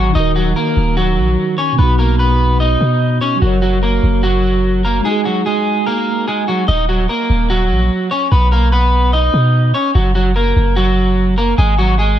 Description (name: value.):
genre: hip hop, trap.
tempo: 147 BPM.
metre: 4/4.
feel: half-time.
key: Eb minor.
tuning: A4 = 440 Hz.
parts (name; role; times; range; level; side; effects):
electric guitar at the edge of break-up; melody; 0.0-12.2 s; Gb3 to Eb5; -16 LUFS; right 1 dB; none.
warm 808-style bass; bass; 0.0-12.2 s; Eb1 to B2; -14 LUFS; equal; none.
mellow tine electric piano; accompaniment; 0.1-6.7 s; B2 to Db5; -19 LUFS; equal; medium stereo tremolo.
room: digital ambience.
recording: none.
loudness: -12 LUFS.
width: side -11 dB against mid.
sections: 0.0-6.7 A section; 6.7-12.2 B section.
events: none.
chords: 0.2 Ebm; 1.8 B; 3.4 Gb; 5.0 Ab5; 6.7 Ebm; 8.3 B; 9.9 Gb; 11.6 Gbsus2/Ab.